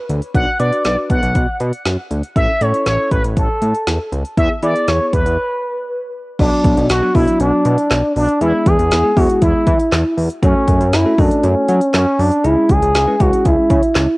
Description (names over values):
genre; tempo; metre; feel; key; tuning
synth-pop; 119 BPM; 4/4; straight; B dorian; A4 = 439 Hz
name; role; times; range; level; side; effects
expressive synth lead; melody; 0.0-14.2 s; C#4 to F#5; -16 LUFS; equal; chorus
fat analog bass; bass; 0.1-14.1 s; A1 to F#3; -17 LUFS; equal; none
deep house drum kit; drums; 0.1-14.1 s; crash cymbal, handclaps, hi-hat, kick drum, snare drum; -18 LUFS; equal; cassette tape
bell-like tine electric piano; accompaniment; 0.3-13.8 s; F#3 to D5; -22 LUFS; left 2 dB; none
room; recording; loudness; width
light reverb; home recording on cassette; -13 LUFS; side -22 dB against mid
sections
0.0-6.4 A section; 6.4-14.2 B section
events
break 5.4-6.4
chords
0.0 Bm; 2.4 A; 4.4 E; 6.4 Bm; 8.4 E; 10.4 F#m; 12.4 C#m